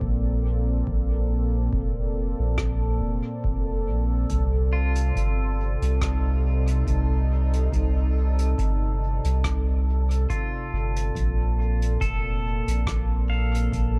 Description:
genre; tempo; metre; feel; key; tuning
ambient dub; 70 BPM; 4/4; swing 55% on 16ths; C dorian; A4 = 440 Hz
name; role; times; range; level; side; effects
warm analog pad; sustained chords; 0.0-14.0 s; Bb2 to D5; -34 LUFS; equal; chorus
soft dub sub bass; bass; 0.0-14.0 s; F1 to C2; -25 LUFS; equal; none
electronic kick drum; drums; 0.0-13.9 s; none; -33 LUFS; equal; none
bubbling stepped-filter texture; texture; 0.0-14.0 s; A4; -39 LUFS; equal; chorus, built-in reverb
soft brush drum kit; drums; 2.6-13.9 s; hi-hat, rim click; -39 LUFS; equal; dub echo
pedal steel guitar; arpeggios; 4.7-14.0 s; F4 to F5; -38 LUFS; equal; dub echo
room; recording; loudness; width
studio ambience; none; -24 LUFS; mono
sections
0.0-14.0 A section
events
none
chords
0.0 Bbmaj7; 4.3 Cm69; 11.2 Bbmaj7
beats
0.01 | 0.87 1.73 2.58 3.44 | 4.30 5.16 6.01 6.87 | 7.73 8.59 9.44 10.30 | 11.16 12.01 12.87 13.73

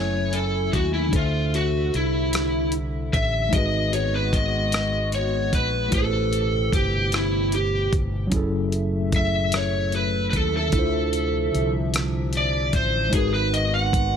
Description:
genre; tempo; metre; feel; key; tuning
slow six-eight R&B; 50 BPM (dotted quarters); 6/8; straight; unclear; A4 = 440 Hz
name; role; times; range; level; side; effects
lead guitar through a small cranked amp; melody; 0.0-14.2 s; E4 to F#5; -24 LUFS; equal; overdrive
bright tine electric piano; accompaniment; 0.0-14.2 s; D3 to G#5; -28 LUFS; left 1 dB; overdrive, slow stereo tremolo
hollow soft pad; sustained chords; 0.0-14.2 s; A2 to G#5; -34 LUFS; equal; chorus
fretless electric bass; bass; 0.0-14.2 s; F#1 to D#2; -26 LUFS; equal; none
dusty soul sampler-style drum kit; drums; 0.3-14.1 s; hi-hat, kick drum, rim click; -25 LUFS; equal; none
room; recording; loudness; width
little or no reverb; none; -20 LUFS; side -8 dB against mid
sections
0.0-14.2 A section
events
lead electric guitar solo 0.0-14.2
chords
0.0 F#m9; 1.1 Dsus2; 3.5 G#m9; 5.9 Am9; 8.3 F#m9; 10.7 Dm9; 13.1 G#m9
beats
| 1.13 2.33 | 3.53 4.73 | 5.93 7.13 | 8.33 9.53 | 10.73 11.93 | 13.13

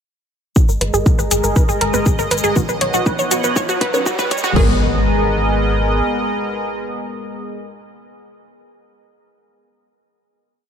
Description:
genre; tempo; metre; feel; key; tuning
melodic techno; 120 BPM; 4/4; straight; G# minor; A4 = 436 Hz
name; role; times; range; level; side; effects
sweeping resonant pad; sustained chords; 0.6-7.6 s; G#3 to F#5; -21 LUFS; equal; chorus, sidechain pumping
wide unison pluck; arpeggios; 0.6-4.8 s; F#4 to C#5; -21 LUFS; right 1 dB; sidechain pumping, ping-pong delay
filtered dub chord stab; stabs; 0.6-7.6 s; D#3 to B4; -26 LUFS; right 1 dB; none
deep house drum kit; drums; 0.6-4.7 s; crash cymbal, hi-hat, shaker; -24 LUFS; left 2 dB; overdrive
electronic kick drum; drums; 0.6-4.7 s; none; -16 LUFS; equal; none
riser and impact; sound effects; 2.3-7.6 s; none; -25 LUFS; equal; none
tight sequencer bass; bass; 0.7-6.0 s; G#1 to B1; -21 LUFS; equal; tube saturation, sidechain pumping
room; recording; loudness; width
light reverb; high-pass filter; -14 LUFS; side -8 dB against mid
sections
0.6-4.6 build; 4.6-8.6 final chord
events
build-up 0.6-4.6; filter sweep on synth arpeggio sound 0.6-4.6; filter sweep on synth stab 0.6-4.6; filter sweep 0.6-4.6; riser 2.3-4.6; drum fill 2.6-4.6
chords
0.6 G#madd9; 2.6 Badd9; 4.6 G#madd9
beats
| 0.56 1.06 1.56 2.06 | 2.56 3.06 3.56 4.06 | 4.56 5.06 5.56 6.06 | 6.56 7.06 7.56

